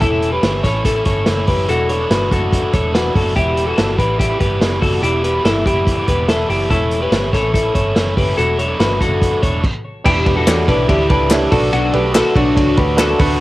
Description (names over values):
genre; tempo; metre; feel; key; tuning
jangly indie pop; 143 BPM; 4/4; straight; unclear; A4 = 439 Hz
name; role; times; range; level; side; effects
biting overdriven guitar; accompaniment; 0.0-13.4 s; E2 to F#4; -22 LUFS; right 3 dB; cassette tape
twelve-string electric guitar; arpeggios; 0.0-13.4 s; D4 to C#5; -17 LUFS; left 2 dB; cassette tape, tape echo
picked electric bass; bass; 0.0-13.4 s; E1 to E2; -20 LUFS; equal; none
vintage drum kit; drums; 0.0-13.3 s; crash cymbal, hi-hat, kick drum, ride cymbal, snare drum; -18 LUFS; equal; cassette tape
reed electric piano; accompaniment; 10.0-13.4 s; D4 to D5; -20 LUFS; right 4 dB; cassette tape
group handclap; percussion; 10.5-13.1 s; none; -25 LUFS; left 4 dB; none
room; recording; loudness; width
light reverb; home recording on cassette, faint mains hum; -13 LUFS; side -17 dB against mid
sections
0.0-10.1 A section; 10.1-13.4 B section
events
stop 9.6-10.1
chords
0.0 A/E; 1.7 Bm7/E; 3.4 Em; 6.7 A/E; 8.4 Bm7/E; 11.5 Bm7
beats
| 0.02 0.43 0.85 1.27 | 1.69 2.11 2.53 2.94 | 3.36 3.78 4.20 4.62 | 5.04 5.45 5.87 6.29 | 6.71 7.13 7.55 7.96 | 8.38 8.80 9.22 9.64 | 10.06 10.48 10.90 11.31 | 11.73 12.15 12.57 12.99